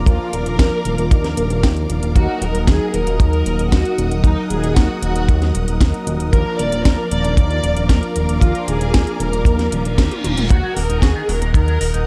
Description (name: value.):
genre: italo disco.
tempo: 115 BPM.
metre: 4/4.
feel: straight.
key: Eb harmonic minor.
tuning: A4 = 440 Hz.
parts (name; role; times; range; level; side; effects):
string machine, full ensemble; sustained chords; 0.0-12.1 s; Bb4 to Eb6; -34 LUFS; equal; ensemble chorus.
mellow synth brass; stabs; 0.0-10.5 s; F3 to Bb4; -27 LUFS; equal; chorus.
chorused synth bass; bass; 0.0-12.1 s; Eb1 to Eb2; -22 LUFS; equal; none.
dark studio violin section; melody; 0.1-12.0 s; Eb4 to D5; -26 LUFS; equal; delay.
house drum kit; drums; 0.1-12.0 s; hi-hat, snare drum, toms; -27 LUFS; equal; studio reverb.
kick drum; drums; 0.1-11.7 s; none; -16 LUFS; equal; studio reverb.
reverse cymbal; sound effects; 9.7-10.5 s; none; -32 LUFS; equal; none.
electric guitar with an envelope filter; arpeggios; 10.5-12.0 s; Eb3 to Gb4; -31 LUFS; equal; delay.
room: little or no reverb.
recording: dark, warm production.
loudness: -17 LUFS.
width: mono.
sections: 0.0-12.1 A section.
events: reverse cymbal 9.7-10.5; drum fill 10.0-10.5.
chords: 0.0 Bb/Eb; 2.2 Ebm; 6.3 Bb/Eb; 10.5 Ebm.